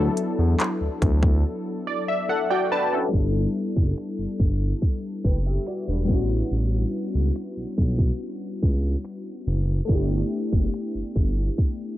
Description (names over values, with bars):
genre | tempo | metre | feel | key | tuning
contemporary R&B | 71 BPM | 4/4 | straight | unclear | A4 = 440 Hz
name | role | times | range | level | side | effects
warm analog keys | accompaniment | 0.0-12.0 s | F#3 to A5 | -26 LUFS | left 2 dB | chorus
smooth synth bass | bass | 0.0-11.5 s | E1 to E2 | -23 LUFS | equal | transformer saturation
trap drum kit | drums | 0.2-11.8 s | finger snaps, handclaps, hi-hat, kick drum | -22 LUFS | equal | none
handpan | texture | 2.3-3.5 s | A4 | -40 LUFS | left 9 dB | none
room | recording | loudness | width
little or no reverb | dry, gritty hardware recording, transformer saturation, cassette tape, low-pass filter | -22 LUFS | side -14 dB against mid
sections
0.0-3.1 A section; 3.1-12.0 B section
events
break 1.4-3.1; synth keys fill 1.4-3.1; filter sweep 3.1-12.0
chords
0.0 D69; 3.1 G6; 6.1 A13; 9.9 G6